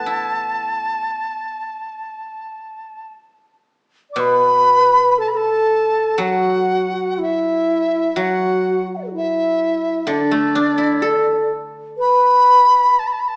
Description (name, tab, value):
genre	chinese traditional, Chinese chamber ensemble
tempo	56-64 BPM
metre	4/4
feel	rubato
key	A zhi mode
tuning	A4 = 440 Hz
part	large dizi	melody	0.0-13.4 s	D5 to D6	-20 LUFS	equal	none
part	guzheng	accompaniment	0.0-13.0 s	A2 to A4	-27 LUFS	equal	none
part	bright reedy low xiao	second line	4.1-12.9 s	D4 to F#5	-21 LUFS	equal	none
room	wet recital hall reverb, RT60 1.4 s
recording	small speaker sound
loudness	-17 LUFS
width	mono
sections	0.0-4.2 A section; 4.2-13.4 B section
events	none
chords	none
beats	| 0.07 1.05 2.08 3.13 | 4.17 5.19 6.19 7.18 | 8.17 9.14 10.08 11.02 | 11.99 12.96